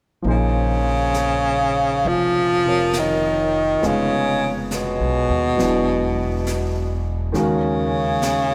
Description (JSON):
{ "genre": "jazz ballad", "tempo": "68 BPM", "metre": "4/4", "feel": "swing 68% on 8ths", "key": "Bb minor", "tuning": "A4 = 441 Hz", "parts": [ { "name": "warm concert grand piano", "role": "accompaniment", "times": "0.2-8.5 s", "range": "C3 to Db5", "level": "-27 LUFS", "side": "equal", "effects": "none" }, { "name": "upright bass", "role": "bass", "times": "0.2-8.5 s", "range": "E1 to Eb2", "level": "-28 LUFS", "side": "equal", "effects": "none" }, { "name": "jazz brush drum kit", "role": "drums", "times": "0.2-8.5 s", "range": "brushed snare drum, hi-hat, snare drum", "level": "-36 LUFS", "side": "equal", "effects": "none" }, { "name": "clear baritone saxophone", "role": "melody", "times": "0.3-8.5 s", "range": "Cb3 to F3", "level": "-22 LUFS", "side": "equal", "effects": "none" } ], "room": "moderate cathedral reverb, RT60 4.7 s", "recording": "recorded in a church or concert hall", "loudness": "-20 LUFS", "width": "mono", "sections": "0.3-8.5 A section", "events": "none", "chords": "0.3 Bbm7; 3.8 Fm7b5; 5.6 E9; 7.3 Ebm7", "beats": "| 0.25 1.15 2.05 2.94 | 3.83 4.71 5.60 6.47 | 7.35 8.23" }